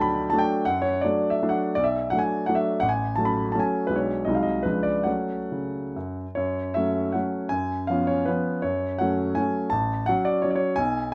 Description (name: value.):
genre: classical, romantic triple-time dance for piano with dotted rhythms.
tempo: 129-177 BPM.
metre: 3/4.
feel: rubato.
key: F# minor.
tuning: A4 = 441 Hz.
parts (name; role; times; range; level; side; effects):
warm baby grand piano; solo; 0.0-11.1 s; A1 to B5; -25 LUFS; equal; none.
room: moderate large studio reverb, RT60 0.9 s.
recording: none.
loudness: -25 LUFS.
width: mono.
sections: 0.0-6.4 A section; 6.4-11.1 B section.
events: none.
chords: 0.0 D; 0.7 D/F#; 1.8 Bm7; 2.8 F#m/A; 3.9 G#m7b5/B; 4.3 G#7/B#; 4.7 C#7b9; 5.1 F#m; 7.5 C#7/F#; 8.6 F#m; 9.7 F#m/A.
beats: 0.32 | 0.66 1.03 1.41 | 1.76 2.12 2.48 | 2.82 3.18 3.54 | 3.90 4.27 4.65 | 5.06 5.51 5.95 | 6.37 6.76 7.14 | 7.51 7.90 8.28 | 8.64 9.01 9.38 | 9.73 10.09 10.45 | 10.79.